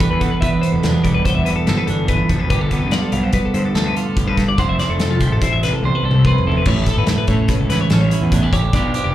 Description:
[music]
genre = math rock and midwest emo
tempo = 144 BPM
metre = 5/4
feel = straight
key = unclear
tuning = A4 = 440 Hz
[part]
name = clean electric guitar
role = accompaniment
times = 0.0-9.1 s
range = F2 to C5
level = -19 LUFS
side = right 3 dB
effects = spring reverb
[part]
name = twelve-string electric guitar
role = arpeggios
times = 0.0-9.1 s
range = F4 to F5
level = -23 LUFS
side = left 7 dB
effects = slapback echo
[part]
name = loose indie drum kit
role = drums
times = 0.0-9.0 s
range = crash cymbal, hi-hat, kick drum, snare drum, toms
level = -20 LUFS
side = left 1 dB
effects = none
[part]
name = fuzz picked electric bass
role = bass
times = 0.1-9.1 s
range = E1 to A2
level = -20 LUFS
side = left 1 dB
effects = overdrive
[sound]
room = light reverb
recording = live gig heard through the venue's PA, club reverb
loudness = -14 LUFS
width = side -13 dB against mid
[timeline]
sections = 0.0-6.7 A section; 6.7-9.1 B section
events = drum fill 5.8-6.7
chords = 0.0 Cmaj9/E (rootless); 2.5 G9; 4.6 Fmaj9; 6.7 A7

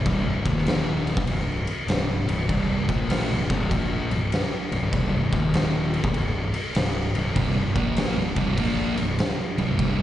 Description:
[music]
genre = stoner and doom metal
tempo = 99 BPM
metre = 4/4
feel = swing 65% on 8ths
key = C minor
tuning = A4 = 439 Hz
[part]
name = thick fuzz guitar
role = riff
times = 0.0-10.0 s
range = C2 to Bb3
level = -26 LUFS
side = left 2 dB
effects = distortion
[part]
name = fuzz fingered electric bass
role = bass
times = 0.0-10.0 s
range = C1 to Bb1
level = -29 LUFS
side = right 1 dB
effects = overdrive
[part]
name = oversized low-tuned drum kit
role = drums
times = 0.1-10.0 s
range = crash cymbal, kick drum, snare drum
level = -26 LUFS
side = equal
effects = none
[part]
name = thick fuzz guitar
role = riff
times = 7.4-10.0 s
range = C2 to Bb3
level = -27 LUFS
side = right 6 dB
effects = distortion
[sound]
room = small room ambience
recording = live gig heard through the venue's PA, recital hall reverb, nothing above 10.5 kHz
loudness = -22 LUFS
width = side -12 dB against mid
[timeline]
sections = 0.0-10.0 A section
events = none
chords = 0.4 Eb5; 1.1 C5; 5.2 Eb5; 6.0 C5

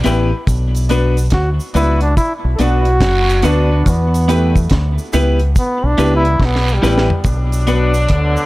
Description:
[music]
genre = roots reggae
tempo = 71 BPM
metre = 4/4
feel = swing 65% on 16ths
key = B minor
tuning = A4 = 442 Hz
[part]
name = clean electric guitar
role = accompaniment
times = 0.0-7.9 s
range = B3 to B4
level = -21 LUFS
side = right 1 dB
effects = phaser, tape echo
[part]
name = clear upright piano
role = stabs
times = 0.0-7.9 s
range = D4 to B4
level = -22 LUFS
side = left 4 dB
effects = none
[part]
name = deep dub fingered electric bass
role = bass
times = 0.0-8.4 s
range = F#1 to E2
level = -15 LUFS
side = equal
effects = none
[part]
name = deep reggae drum kit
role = drums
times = 0.0-8.4 s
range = hi-hat, kick drum, rim click, snare drum, toms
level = -16 LUFS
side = equal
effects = none
[part]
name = cabasa and guiro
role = percussion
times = 0.1-8.5 s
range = none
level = -29 LUFS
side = right 4 dB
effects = none
[part]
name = bright trombone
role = melody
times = 1.3-8.5 s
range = D3 to A4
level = -19 LUFS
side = equal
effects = tape echo
[part]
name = warm horn section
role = second line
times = 7.2-8.5 s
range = B2 to D4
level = -20 LUFS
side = left 1 dB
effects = none
[sound]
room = light reverb, small room ambience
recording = none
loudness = -12 LUFS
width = side -19 dB against mid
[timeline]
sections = 0.0-7.2 A section; 7.2-8.5 B section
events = trombone solo 0.0-7.2; drum fill 6.4-7.2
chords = 0.5 Bm; 3.9 Em; 7.2 Bm

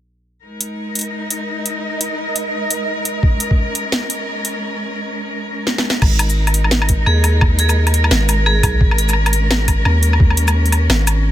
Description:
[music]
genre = half-time drum and bass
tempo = 172 BPM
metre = 4/4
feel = swing 60% on 16ths, half-time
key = unclear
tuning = A4 = 445 Hz
[part]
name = warm studio cello section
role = sustained chords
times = 0.4-11.3 s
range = G#3 to A#4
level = -22 LUFS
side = left 1 dB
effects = sidechain pumping
[part]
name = flickering grainy texture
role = texture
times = 1.1-4.6 s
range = D#5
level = -29 LUFS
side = right 3 dB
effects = built-in reverb
[part]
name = drum and bass drum kit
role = drums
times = 0.6-11.2 s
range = crash cymbal, hi-hat, shaker, snare drum, woodblock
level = -19 LUFS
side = equal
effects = none
[part]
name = electronic kick drum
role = drums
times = 3.2-3.6, 6.0-10.3 s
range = none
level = -14 LUFS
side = equal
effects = none
[part]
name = long sustained 808-style bass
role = bass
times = 6.0-11.3 s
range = G#1 to D#2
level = -15 LUFS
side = equal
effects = tube saturation
[part]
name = vibraphone with hard mallets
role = melody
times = 7.1-8.8 s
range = G#4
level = -22 LUFS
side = right 3 dB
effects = digital delay
[sound]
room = digital ambience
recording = none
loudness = -14 LUFS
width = side -13 dB against mid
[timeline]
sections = 0.4-6.0 A section; 6.0-11.3 B section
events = break 4.6-6.0; drum fill 5.7-6.0; drop 6.0-11.3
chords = 0.4 G#5

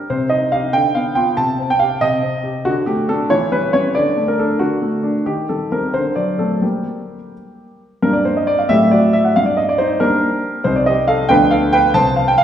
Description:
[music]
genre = classical-period piano sonatina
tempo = 92 BPM (dotted quarters)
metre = 6/8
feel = rubato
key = G minor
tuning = A4 = 441 Hz
[part]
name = clear concert grand piano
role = solo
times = 0.0-12.4 s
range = C2 to A5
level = -14 LUFS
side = equal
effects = none
[sound]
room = wet recital hall reverb, RT60 1.8 s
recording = heard from further back in the room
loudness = -14 LUFS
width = side -10 dB against mid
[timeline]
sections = 0.0-8.0 A section; 8.0-12.4 A section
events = none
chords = 0.1 Cm; 0.7 Bdim/D; 1.4 Cm; 2.7 D5; 3.3 C#dim/E; 3.9 D; 5.3 Cm/Eb; 5.9 D; 6.6 Gm; 8.7 F#dim/A; 9.4 Gm; 10.7 Cm; 11.3 Bdim/D

